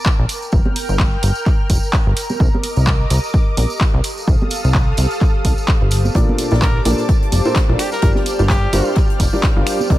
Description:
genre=piano house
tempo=128 BPM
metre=4/4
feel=swing 56% on 16ths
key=unclear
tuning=A4 = 441 Hz
part: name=analog string pad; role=sustained chords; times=0.0-10.0 s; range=A4 to F6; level=-27 LUFS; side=equal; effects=ensemble chorus, sidechain pumping
part: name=electronic kick drum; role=drums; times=0.1-10.0 s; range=none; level=-15 LUFS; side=equal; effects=none
part: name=punchy analog drum machine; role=drums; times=0.1-9.8 s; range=finger snaps, handclaps, hi-hat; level=-24 LUFS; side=equal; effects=none
part: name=tambourine and congas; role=percussion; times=0.1-10.0 s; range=none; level=-27 LUFS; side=right 2 dB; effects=none
part: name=plucky analog bass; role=bass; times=0.2-10.0 s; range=F1 to C2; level=-16 LUFS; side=equal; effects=sidechain pumping
part: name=granular cloud pad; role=texture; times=2.3-10.0 s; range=G4 to Bb5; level=-27 LUFS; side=equal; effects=built-in reverb, sidechain pumping
part: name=clear upright piano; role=riff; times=6.2-10.0 s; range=Bb2 to F5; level=-21 LUFS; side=equal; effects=sidechain pumping, tape echo
part: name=natural country drum kit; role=drums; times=6.2-10.0 s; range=hi-hat, snare drum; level=-34 LUFS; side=left 3 dB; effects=high-pass filter on hats, high-pass filter on snare, high-pass filter on room
part: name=clear trumpet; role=melody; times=6.6-9.0 s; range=G4 to Bb4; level=-27 LUFS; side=equal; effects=tape echo
room=small room ambience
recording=none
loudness=-14 LUFS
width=side -15 dB against mid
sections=0.0-10.0 A section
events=none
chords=0.3 Gm7; 2.4 Cm9; 4.0 F7/C; 6.2 Bbmaj7

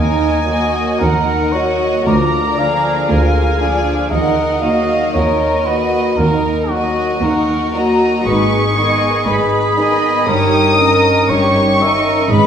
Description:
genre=classical, slow romantic movement for symphony orchestra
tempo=58 BPM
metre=4/4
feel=rubato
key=Eb minor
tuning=A4 = 438 Hz
part: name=dark studio violin section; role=melody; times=0.0-12.5 s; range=Eb5 to Eb6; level=-19 LUFS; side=left 2 dB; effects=none
part: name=mellow cor anglais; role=second line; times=0.0-12.5 s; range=Gb4 to F5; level=-19 LUFS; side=right 2 dB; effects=none
part: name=rich studio violin section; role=second line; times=0.0-12.5 s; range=Eb4 to Eb5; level=-20 LUFS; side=left 1 dB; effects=none
part: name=dark symphonic viola section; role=accompaniment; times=0.0-12.5 s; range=D3 to F4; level=-19 LUFS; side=right 1 dB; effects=none
part: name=concert harp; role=arpeggios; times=0.0-12.5 s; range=G2 to Bb4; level=-22 LUFS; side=left 5 dB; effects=none
part: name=dark studio double bass section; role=bass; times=0.0-12.5 s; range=G1 to Eb2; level=-23 LUFS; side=right 2 dB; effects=none
part: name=warm studio cello section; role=bass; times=0.0-12.5 s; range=D2 to Ab2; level=-22 LUFS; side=right 2 dB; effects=none
room=wet recital hall reverb, RT60 1.6 s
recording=recorded in a church or concert hall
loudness=-12 LUFS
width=side -8 dB against mid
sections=0.0-12.5 A section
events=none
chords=0.0 Ebm; 2.1 Bb7/D; 4.1 Ebm; 8.2 Abm; 10.3 Eb7/G

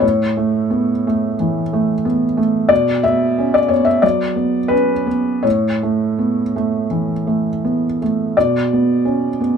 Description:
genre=neoclassical minimalist piano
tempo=81-92 BPM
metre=4/4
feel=rubato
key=unclear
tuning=A4 = 439 Hz
part: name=felt-muted upright piano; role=solo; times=0.0-9.6 s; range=A2 to E5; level=-15 LUFS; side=equal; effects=none
room=light reverb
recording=close, detailed microphones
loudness=-15 LUFS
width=side -7 dB against mid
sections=0.0-9.6 A section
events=none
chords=0.0 A; 2.7 Bm; 5.4 A; 8.4 Bm

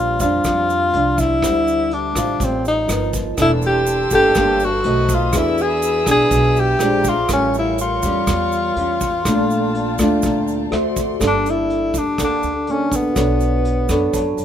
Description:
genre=bossa nova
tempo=123 BPM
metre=4/4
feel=straight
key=unclear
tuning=A4 = 440 Hz
part: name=breathy tenor saxophone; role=melody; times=0.0-14.4 s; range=B3 to G#4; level=-18 LUFS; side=left 2 dB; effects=none
part: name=mellow tine electric piano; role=accompaniment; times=0.0-14.4 s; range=Bb3 to B5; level=-27 LUFS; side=right 2 dB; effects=medium stereo tremolo
part: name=nylon-string guitar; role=accompaniment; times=0.0-14.4 s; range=A2 to C#5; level=-21 LUFS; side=equal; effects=none
part: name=upright bass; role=bass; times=0.0-14.4 s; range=E1 to F#2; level=-24 LUFS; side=right 1 dB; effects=none
part: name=vintage brush drum kit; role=drums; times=0.2-14.4 s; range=hi-hat, kick drum, rim click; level=-26 LUFS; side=equal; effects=none
part: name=tube shaker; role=percussion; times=0.2-14.4 s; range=none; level=-31 LUFS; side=right 7 dB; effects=none
part: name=warm chamber string section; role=sustained chords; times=3.4-11.2 s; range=Bb4 to E6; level=-31 LUFS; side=left 3 dB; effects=none
room=little or no reverb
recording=minimal, uncompressed stereo recording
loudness=-15 LUFS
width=side -9 dB against mid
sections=0.0-11.2 A section; 11.2-14.4 B section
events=tine electric piano fill 10.5-11.2, 13.6-14.4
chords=0.0 Bb69; 1.4 Dm11; 2.9 G7alt; 3.4 C13/E; 4.9 B7b9; 5.3 E7; 6.8 Bb9; 7.3 A7b9b13; 9.3 Gm9/Bb; 10.7 D7; 11.2 Gmadd9; 13.2 Bm9

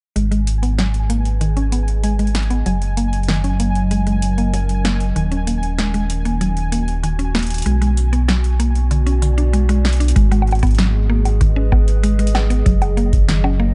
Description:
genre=IDM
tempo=96 BPM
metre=4/4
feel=straight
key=G# minor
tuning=A4 = 440 Hz
part: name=warbly tape-like pad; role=sustained chords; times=0.2-13.7 s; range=B2 to D#5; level=-29 LUFS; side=equal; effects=chorus, built-in reverb
part: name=mallet-like synth pluck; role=arpeggios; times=0.2-13.7 s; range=D3 to D4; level=-25 LUFS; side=equal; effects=chorus, cassette tape, dub echo
part: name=round analog bass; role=bass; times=0.2-13.7 s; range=D#1 to B1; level=-19 LUFS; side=equal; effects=tube saturation
part: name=electro analog drum machine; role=drums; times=0.2-13.6 s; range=bongos, hi-hat, snare drum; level=-28 LUFS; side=equal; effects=none
part: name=pulsing gated texture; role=texture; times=0.6-10.2 s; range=G#5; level=-35 LUFS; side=equal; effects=chorus, built-in reverb, sidechain pumping
part: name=electronic kick drum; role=drums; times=10.2-13.3 s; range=none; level=-19 LUFS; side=equal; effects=none
room=little or no reverb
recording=dark, warm production, nothing above 11.0 kHz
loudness=-17 LUFS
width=mono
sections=0.2-10.2 A section; 10.2-13.7 B section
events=filter sweep on analog synth bass 0.2-10.2; filter sweep on synth arpeggio sound 0.2-10.2; drum fill 9.8-10.2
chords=0.2 G#m; 2.7 F#6; 5.2 D#m7; 7.7 Bm; 10.2 G#m; 12.7 F#6

